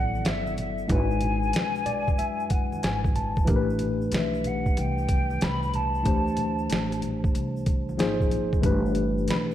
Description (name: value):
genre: hip hop, jazz-hop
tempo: 93 BPM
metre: 4/4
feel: swing 66% on 16ths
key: G major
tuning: A4 = 440 Hz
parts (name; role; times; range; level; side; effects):
- mellow hollow silver concert flute; melody; 0.0-9.4 s; E5 to B5; -31 LUFS; left 1 dB; tape echo
- tine electric piano; accompaniment; 0.0-9.5 s; E3 to A5; -28 LUFS; left 2 dB; medium stereo tremolo
- upright bass; bass; 0.0-9.5 s; G1 to F#2; -30 LUFS; right 1 dB; none
- congas and egg shaker; percussion; 0.1-9.5 s; none; -41 LUFS; right 3 dB; none
- boom bap sampler-style drum kit; drums; 0.2-9.5 s; hi-hat, kick drum, snare drum; -26 LUFS; right 1 dB; none
room: moderate lush hall reverb, RT60 1.8 s, small room ambience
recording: dreamy mix soaked in reverb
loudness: -23 LUFS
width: side -12 dB against mid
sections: 0.0-9.5 A section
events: tine electric piano fill 1.5-3.5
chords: 0.0 G6; 0.9 E9/G#; 3.5 A9sus4; 6.1 D9sus4; 8.0 Ab6; 8.6 G6